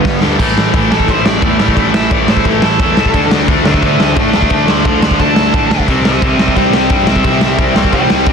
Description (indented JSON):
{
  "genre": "punk rock",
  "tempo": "175 BPM",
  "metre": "4/4",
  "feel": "straight",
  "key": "A minor",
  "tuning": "A4 = 439 Hz",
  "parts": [
    { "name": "overdriven electric guitar", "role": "melody", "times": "0.0-8.3 s", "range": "B3 to C6", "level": "-17 LUFS", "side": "right 1 dB", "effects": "digital delay" },
    { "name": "distorted electric guitar", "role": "riff", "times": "0.0-8.3 s", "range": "G2 to D4", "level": "-13 LUFS", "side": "left 1 dB", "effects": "distortion" },
    { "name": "overdriven picked electric bass", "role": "bass", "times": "0.1-8.3 s", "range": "A1 to A2", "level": "-19 LUFS", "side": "equal", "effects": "none" },
    { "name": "raw garage drum kit", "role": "drums", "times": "0.1-8.3 s", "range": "crash cymbal, kick drum, snare drum", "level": "-14 LUFS", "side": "equal", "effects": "none" }
  ],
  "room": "little or no reverb",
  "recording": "dense, heavily limited modern master",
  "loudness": "-9 LUFS",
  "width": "side -6 dB against mid",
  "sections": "0.4-8.3 A section",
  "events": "drum fill 0.0-0.4; overdriven electric guitar solo 0.4-8.3",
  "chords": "0.4 A5; 3.1 D5; 5.9 C"
}